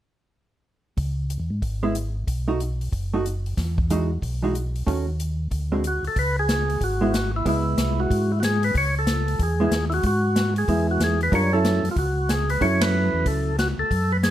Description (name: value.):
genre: soul jazz organ trio.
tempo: 186 BPM.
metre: 4/4.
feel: swing 63% on 8ths.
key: C# minor.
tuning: A4 = 440 Hz.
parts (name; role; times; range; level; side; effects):
mellow tonewheel organ; bass; 1.0-14.3 s; F#1 to G#2; -24 LUFS; equal; chorus vibrato, slow rotary speaker.
swinging big-band drum kit; drums; 1.0-14.3 s; hi-hat, kick drum, ride cymbal, snare drum; -27 LUFS; equal; none.
hollow-body jazz guitar; accompaniment; 1.8-13.5 s; D3 to A#4; -25 LUFS; right 2 dB; none.
percussive tonewheel organ; melody; 5.9-14.3 s; E4 to C#5; -24 LUFS; equal; slow rotary speaker.
room: moderate studio reverb, RT60 0.7 s.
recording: none.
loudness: -20 LUFS.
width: side -12 dB against mid.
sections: 1.0-6.2 A section; 6.2-14.3 B section.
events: band accent 12.8.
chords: 1.0 C#m; 2.3 B7; 3.6 Emaj9; 4.9 D#m7b5; 5.5 D7#11; 6.2 C#m7; 11.3 F#m7.